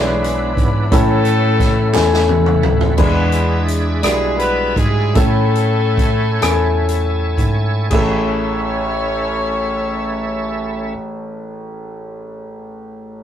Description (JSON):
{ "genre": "slow gospel", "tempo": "36-58 BPM (dotted quarters)", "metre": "6/8", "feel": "straight", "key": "A major", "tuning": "A4 = 440 Hz", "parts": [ { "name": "warm horn section", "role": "melody", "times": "0.0-10.9 s", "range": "G#3 to C#5", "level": "-22 LUFS", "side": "left 1 dB", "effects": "none" }, { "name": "clear concert grand piano", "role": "accompaniment", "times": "0.0-13.2 s", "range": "A1 to G#5", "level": "-19 LUFS", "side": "left 2 dB", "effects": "none" }, { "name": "bright tonewheel organ", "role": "sustained chords", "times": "0.0-10.9 s", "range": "E3 to B5", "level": "-26 LUFS", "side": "right 2 dB", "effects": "slow rotary speaker, overdrive, chorus vibrato" }, { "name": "tine electric piano", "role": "bass", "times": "0.0-10.9 s", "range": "A1 to A2", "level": "-19 LUFS", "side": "right 1 dB", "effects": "none" }, { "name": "swinging big-band drum kit", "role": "drums", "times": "0.2-8.2 s", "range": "crash cymbal, hi-hat, kick drum, rim click, snare drum, toms", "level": "-19 LUFS", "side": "right 1 dB", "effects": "none" }, { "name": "group handclap", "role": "percussion", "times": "1.9-2.3 s", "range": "none", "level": "-27 LUFS", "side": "right 3 dB", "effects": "none" } ], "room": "moderate studio reverb, RT60 0.6 s", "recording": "rough rehearsal-room recording", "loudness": "-14 LUFS", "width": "side -10 dB against mid", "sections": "0.0-3.0 A section; 3.0-7.9 B section; 7.9-13.2 C section", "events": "drum fill 2.0-3.0; slowing down 3.0-7.9", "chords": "0.0 E7; 0.9 Amaj7; 3.0 E7; 5.2 Amaj7", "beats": "| 0.92 1.95 | 2.98 4.04 | 5.16 6.42 | 7.92 9.58 | 11.24 12.90" }